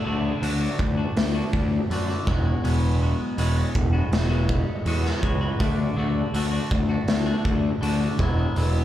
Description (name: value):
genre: quiet-loud alternative rock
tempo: 81 BPM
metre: 4/4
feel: straight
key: unclear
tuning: A4 = 437 Hz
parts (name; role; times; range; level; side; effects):
- clean electric guitar; arpeggios; 0.0-8.8 s; E2 to F#4; -29 LUFS; left 2 dB; phaser, slapback echo
- fuzz picked electric bass; bass; 0.1-8.8 s; E1 to F#2; -23 LUFS; left 1 dB; overdrive
- raw garage drum kit; drums; 0.4-8.7 s; hi-hat, kick drum, snare drum; -26 LUFS; right 1 dB; none
room: little or no reverb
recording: live gig heard through the venue's PA, club ambience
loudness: -21 LUFS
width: side -12 dB against mid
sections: 0.0-8.8 A section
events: none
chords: 0.0 D; 2.3 Eadd9; 5.6 D; 8.2 Eadd9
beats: 0.43 1.17 1.91 | 2.65 3.38 4.12 4.86 | 5.60 6.34 7.08 7.82 | 8.56